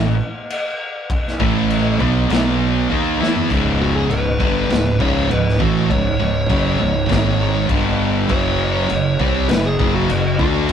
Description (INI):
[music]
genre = stoner and doom metal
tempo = 100 BPM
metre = 4/4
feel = straight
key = C# minor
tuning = A4 = 440 Hz
[part]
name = heavy high-gain guitar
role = riff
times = 0.0-10.7 s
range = C#2 to E4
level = -24 LUFS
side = left 1 dB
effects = distortion
[part]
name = thick fuzz guitar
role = riff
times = 0.0-10.7 s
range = C#2 to E4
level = -23 LUFS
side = left 6 dB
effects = distortion
[part]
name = thick fuzz guitar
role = riff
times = 0.0-10.7 s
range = C#2 to E4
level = -21 LUFS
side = right 6 dB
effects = distortion
[part]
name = fuzz fingered electric bass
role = bass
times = 0.0-10.7 s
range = C#1 to E2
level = -22 LUFS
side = left 1 dB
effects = overdrive
[part]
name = raw garage drum kit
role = drums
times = 0.5-10.7 s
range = crash cymbal, kick drum, snare drum, toms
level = -22 LUFS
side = left 1 dB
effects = none
[part]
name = fuzz lead guitar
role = melody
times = 3.8-10.7 s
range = F#4 to C#5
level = -23 LUFS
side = right 1 dB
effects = distortion
[sound]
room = moderate small room reverb, RT60 0.6 s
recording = rough rehearsal-room recording, tube saturation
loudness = -15 LUFS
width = side -8 dB against mid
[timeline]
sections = 0.0-3.5 A section; 3.5-10.7 B section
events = drum fill 2.9-3.5; lead electric guitar solo 3.5-10.7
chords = 0.0 A5; 2.3 B5; 2.9 Badd11/D#; 3.5 C#m; 7.1 G#5; 7.7 G5; 8.3 F#5